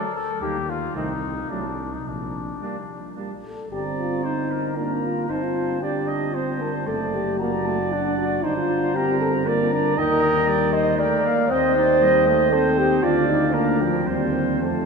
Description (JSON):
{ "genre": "classical, brass quintet", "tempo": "105-120 BPM", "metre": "3/4", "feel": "rubato", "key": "G minor", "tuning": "A4 = 440 Hz", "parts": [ { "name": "warm cornet", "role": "melody", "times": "0.0-14.9 s", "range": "D4 to Bb5", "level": "-30 LUFS", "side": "left 5 dB", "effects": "none" }, { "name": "clear trumpet", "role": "second line", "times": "0.0-14.9 s", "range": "Bb3 to Eb5", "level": "-28 LUFS", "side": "right 5 dB", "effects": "none" }, { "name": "mellow French horn", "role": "accompaniment", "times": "0.0-14.9 s", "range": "G3 to Eb5", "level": "-23 LUFS", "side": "left 1 dB", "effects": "none" }, { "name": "warm trombone", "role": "accompaniment", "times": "0.0-14.9 s", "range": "Eb3 to Eb4", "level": "-27 LUFS", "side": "right 3 dB", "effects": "none" }, { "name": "mellow bass trombone", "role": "bass", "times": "0.4-14.9 s", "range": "F#1 to F2", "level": "-28 LUFS", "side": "right 1 dB", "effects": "none" } ], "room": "wet cathedral reverb, RT60 4.8 s", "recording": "minimal, uncompressed stereo recording", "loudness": "-19 LUFS", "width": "side -5 dB against mid", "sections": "0.0-3.7 A section; 3.7-14.9 A section", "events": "none", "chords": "0.4 Eb; 0.9 Adim/C; 1.5 D7/C; 2.0 Gm/Bb; 3.7 Gm; 6.9 D/F#; 8.4 Gm; 10.0 Eb; 11.5 Eb6; 13.0 Bb/D; 14.1 Cm/Eb", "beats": "| 0.41 0.95 1.48 | 2.04 2.60 3.16 | 3.71 4.25 4.77 | 5.29 5.82 6.34 | 6.87 7.40 7.92 | 8.44 8.95 9.47 | 9.97 10.48 10.99 | 11.50 12.02 12.52 | 13.03 13.54 14.07 | 14.62" }